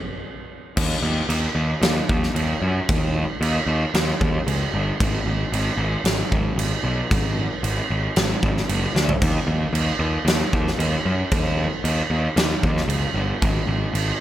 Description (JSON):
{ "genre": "hard rock", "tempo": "114 BPM", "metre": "4/4", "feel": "straight", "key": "Eb minor", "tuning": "A4 = 443 Hz", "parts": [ { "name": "fuzz picked electric bass", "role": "bass", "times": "0.8-14.1 s", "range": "Gb1 to Gb2", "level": "-22 LUFS", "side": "equal", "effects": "overdrive" }, { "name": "huge arena drum kit", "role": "drums", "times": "0.8-14.1 s", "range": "crash cymbal, kick drum, snare drum, splash cymbal, toms", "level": "-23 LUFS", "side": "right 1 dB", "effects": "none" } ], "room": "little or no reverb", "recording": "none", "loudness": "-19 LUFS", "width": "side -12 dB against mid", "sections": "0.8-14.2 A section", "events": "stop 0.0-0.8; drum fill 8.9", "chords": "none", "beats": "0.24 | 0.77 1.30 1.83 2.36 | 2.88 3.41 3.94 4.47 | 5.00 5.52 6.05 6.58 | 7.10 7.63 8.15 8.68 | 9.21 9.73 10.26 10.78 | 11.31 11.84 12.36 12.89 | 13.41 13.94" }